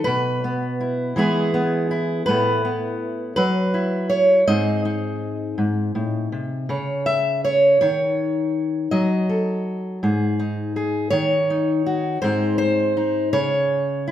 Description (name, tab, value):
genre	folk, solo fingerstyle acoustic guitar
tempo	54 BPM (dotted quarters)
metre	6/8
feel	straight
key	unclear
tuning	A4 = 444 Hz
part	fingerpicked steel-string acoustic guitar	solo	0.0-14.1 s	G#2 to E5	-19 LUFS	equal	none
room	moderate recital hall reverb, RT60 1.3 s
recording	recorded in a church or concert hall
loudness	-19 LUFS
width	side -11 dB against mid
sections	0.0-14.1 A section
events	none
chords	0.1 Bsus4; 1.2 E; 2.3 Asus2; 3.4 F#7sus4; 4.5 G#; 6.7 N.C.; 8.9 F#m; 10.0 G#5; 11.1 D#m7; 12.2 G#; 13.3 C#5